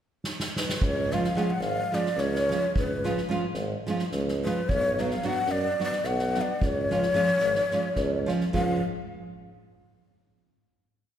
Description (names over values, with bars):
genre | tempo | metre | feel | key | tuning
balkan folk, Balkan wedding band | 217 BPM (eighths) | 7/8 | straight | unclear | A4 = 444 Hz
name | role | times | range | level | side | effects
soft-mallet drum kit | percussion | 0.2-8.8 s | kick drum, snare drum | -33 LUFS | equal | none
breathy ney | melody | 0.6-8.8 s | B4 to F#5 | -27 LUFS | left 2 dB | none
clear tuba | bass | 0.8-8.8 s | G#1 to F#2 | -31 LUFS | right 1 dB | none
nylon-string guitar | accompaniment | 1.1-8.8 s | E#3 to F#4 | -29 LUFS | right 2 dB | none
room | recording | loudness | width
moderate scoring stage reverb, RT60 2.0 s | recorded in a church or concert hall | -24 LUFS | side -10 dB against mid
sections
0.0-0.8 pickup bar; 0.8-8.5 A section; 8.5-10.4 final chord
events
drum fill 0.3-0.8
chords
0.0 N.C.; 0.8 C#; 4.7 Bm; 6.6 C#